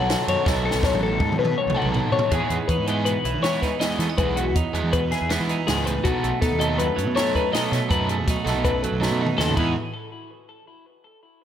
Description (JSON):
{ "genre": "math rock and midwest emo", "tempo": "161 BPM", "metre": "5/4", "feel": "straight", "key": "E major", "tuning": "A4 = 440 Hz", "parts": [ { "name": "twelve-string electric guitar", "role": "arpeggios", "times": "0.0-9.7 s", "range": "E4 to F#5", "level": "-25 LUFS", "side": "left 5 dB", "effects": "tape echo, slapback echo" }, { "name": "overdriven electric guitar", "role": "riff", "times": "0.0-9.7 s", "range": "B2 to A4", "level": "-28 LUFS", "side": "right 2 dB", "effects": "none" }, { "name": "fuzz picked electric bass", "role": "bass", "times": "0.0-9.7 s", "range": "A1 to E3", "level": "-26 LUFS", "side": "equal", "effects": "overdrive" }, { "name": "compact cocktail drum kit", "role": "drums", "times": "0.1-9.7 s", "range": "crash cymbal, hi-hat, kick drum, ride cymbal, snare drum, toms", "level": "-26 LUFS", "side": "equal", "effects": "none" }, { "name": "twelve-string electric guitar", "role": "accompaniment", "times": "2.3-9.8 s", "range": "E2 to G#4", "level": "-27 LUFS", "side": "right 7 dB", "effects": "slapback echo" } ], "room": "moderate lush hall reverb, RT60 1.8 s, small room ambience", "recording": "big arena sound", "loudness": "-20 LUFS", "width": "side -10 dB against mid", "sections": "0.0-2.3 A section; 2.3-9.8 B section; 9.8-11.4 C section", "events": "drum fill 0.5-2.3, 9.0-9.8", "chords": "0.0 B7sus2; 2.3 Emaj7; 6.1 B7; 9.6 Emaj7; 9.8 N.C." }